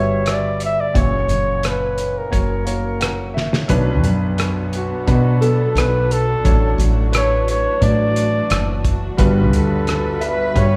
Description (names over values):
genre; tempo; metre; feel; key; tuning
acoustic folk-pop ballad; 88 BPM; 4/4; straight; B minor; A4 = 441 Hz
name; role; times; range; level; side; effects
breathy flugelhorn; melody; 0.0-10.8 s; F#4 to E5; -24 LUFS; equal; none
warm concert grand piano; accompaniment; 0.0-10.8 s; F#1 to F#5; -25 LUFS; equal; none
Celtic harp; arpeggios; 0.0-10.8 s; A4 to E5; -30 LUFS; equal; none
woody fretless electric bass; bass; 0.0-10.8 s; F#1 to B2; -22 LUFS; equal; none
cloth-damped thuddy drum kit; drums; 0.3-10.7 s; hi-hat, kick drum, rim click, snare drum; -24 LUFS; equal; none
warm chamber string section; sustained chords; 3.7-10.8 s; G3 to B4; -32 LUFS; equal; none
room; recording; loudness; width
wet recital hall reverb, RT60 1.7 s; recorded in a church or concert hall; -18 LUFS; mono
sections
0.0-3.7 A section; 3.7-10.8 B section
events
drum fill 3.4-3.7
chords
0.0 Emadd9/G; 0.9 F#; 3.7 Bm; 6.4 Dmaj7/A; 9.2 Gmaj7